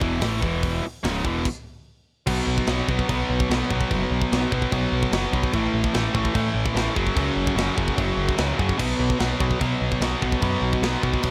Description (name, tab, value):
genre	heavy metal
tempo	147 BPM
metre	4/4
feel	straight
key	unclear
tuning	A4 = 444 Hz
part	tight distorted guitar	riff	0.0-11.3 s	C#2 to B3	-26 LUFS	equal	distortion
part	growling picked electric bass	bass	0.0-11.3 s	C#1 to B2	-29 LUFS	equal	overdrive
part	tight metal drum kit	drums	0.0-11.3 s	china cymbal, crash cymbal, hi-hat, kick drum, snare drum	-29 LUFS	equal	none
room	little or no reverb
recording	none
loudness	-23 LUFS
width	mono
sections	0.0-2.3 A section; 2.3-11.3 B section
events	stop 1.5-2.3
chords	0.4 E5; 0.8 C#5; 1.2 E5; 1.7 N.C.; 2.3 B5; 5.5 A5; 7.0 F#5; 8.8 B5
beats	0.22 | 0.63 1.04 1.45 1.86 | 2.27 2.68 3.09 3.50 | 3.91 4.32 4.72 5.13 | 5.54 5.95 6.35 6.76 | 7.17 7.57 7.98 8.39 | 8.79 9.20 9.61 10.01 | 10.42 10.83 11.23